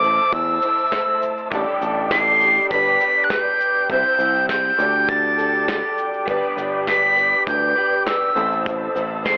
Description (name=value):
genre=indie folk with a building arrangement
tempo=101 BPM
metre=4/4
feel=straight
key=G major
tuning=A4 = 439 Hz
part: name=breathy bright tin whistle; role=melody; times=0.0-9.4 s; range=D6 to C7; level=-18 LUFS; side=equal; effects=tape echo
part: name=bright upright piano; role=accompaniment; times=0.0-9.4 s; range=G1 to E5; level=-28 LUFS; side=equal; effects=none
part: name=picked twelve-string acoustic guitar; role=accompaniment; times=0.0-9.4 s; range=A2 to C5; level=-25 LUFS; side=equal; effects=ensemble chorus
part: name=mellow tonewheel organ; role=sustained chords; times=0.0-9.4 s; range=A4 to E6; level=-27 LUFS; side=equal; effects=slow rotary speaker
part: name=picked electric bass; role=bass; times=0.0-9.4 s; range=G1 to E2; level=-28 LUFS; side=equal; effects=transformer saturation
part: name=tube shaker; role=percussion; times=0.0-9.4 s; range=none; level=-48 LUFS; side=equal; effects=none
part: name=soft brush drum kit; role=drums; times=0.3-9.4 s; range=kick drum, snare drum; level=-27 LUFS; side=equal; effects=none
room=moderate spring reverb, RT60 1.9 s, small room ambience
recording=dry, gritty hardware recording, cassette tape, telephone sound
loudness=-16 LUFS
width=side -38 dB against mid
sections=0.0-9.4 A section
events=none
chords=0.0 Am; 1.5 Dsus4/A; 2.7 G; 3.9 C; 4.8 Dsus4; 6.3 G; 8.4 Am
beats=0.32 0.92 | 1.51 2.11 2.70 3.30 | 3.90 4.49 5.09 5.68 | 6.28 6.88 7.47 8.07 | 8.66 9.26